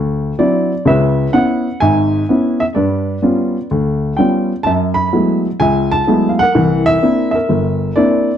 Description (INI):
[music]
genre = solo jazz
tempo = 126 BPM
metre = 4/4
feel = swing 68% on 8ths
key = unclear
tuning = A4 = 436 Hz
[part]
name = dark baby grand piano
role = solo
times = 0.0-8.4 s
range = G1 to B5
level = -12 LUFS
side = equal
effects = slapback echo
[sound]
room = light reverb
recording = dry, close 1970s-style studio recording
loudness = -12 LUFS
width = side -9 dB against mid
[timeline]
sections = 0.0-8.4 A section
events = none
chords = 0.0 D9; 0.8 C#m7; 2.7 G7#11; 4.6 F#m11; 6.5 C9